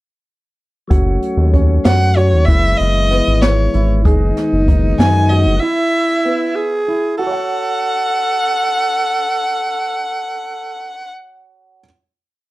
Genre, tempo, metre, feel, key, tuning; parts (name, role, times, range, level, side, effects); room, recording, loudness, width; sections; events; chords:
progressive instrumental, band music in an uneven meter; 191 BPM (eighths); 5/8; straight; F# dorian; A4 = 445 Hz
percussive tonewheel organ; accompaniment; 0.9-5.6 s; D#3 to F#4; -21 LUFS; left 3 dB; slow rotary speaker
dark baby grand piano; arpeggios; 0.9-11.9 s; B3 to F#5; -24 LUFS; right 2 dB
round analog bass; bass; 0.9-5.6 s; F#1 to F#2; -14 LUFS; equal
jazz brush drum kit; drums; 0.9-5.5 s; hi-hat, kick drum, snare drum; -15 LUFS; equal
warm violin; melody; 1.9-11.1 s; C#5 to G#5; -18 LUFS; equal
growling alto saxophone; second line; 4.1-11.1 s; D#4 to A4; -21 LUFS; right 2 dB
light reverb; dark, warm production; -13 LUFS; side -18 dB against mid
0.9-7.2 groove; 7.2-10.3 final chord
0.9 F#m; 2.5 F#13sus4; 4.1 G#m/F#; 5.6 E; 7.2 F#m